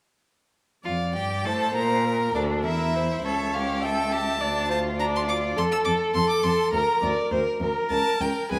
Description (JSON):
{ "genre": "quick classical-period movement for string quartet", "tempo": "102 BPM", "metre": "2/4", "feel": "straight", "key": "D minor", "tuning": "A4 = 439 Hz", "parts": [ { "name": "clear violin", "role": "melody", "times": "0.8-8.6 s", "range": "D5 to E6", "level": "-31 LUFS", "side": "equal", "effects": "none" }, { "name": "rich violin", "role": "second line", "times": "0.8-8.6 s", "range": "D4 to Cb5", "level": "-30 LUFS", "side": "equal", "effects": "none" }, { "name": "rich cello", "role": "bass", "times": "0.8-8.6 s", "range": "Db2 to Bb2", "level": "-31 LUFS", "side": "equal", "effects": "none" }, { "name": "clear viola", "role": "accompaniment", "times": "0.9-8.6 s", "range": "Ab4 to E5", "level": "-30 LUFS", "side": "equal", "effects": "none" } ], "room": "wet recital hall reverb, RT60 1.7 s", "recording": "none", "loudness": "-25 LUFS", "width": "mono", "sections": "0.9-8.6 A section", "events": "none", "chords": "0.9 Dm/F; 2.1 Bbmaj9#11/D; 3.2 A7/C#; 4.4 Dm; 5.6 F; 6.7 Bb/D; 7.9 Bbm", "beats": "| 0.86 1.46 | 2.06 2.65 | 3.24 3.83 | 4.41 4.99 | 5.58 6.16 | 6.74 7.32 | 7.91 8.51" }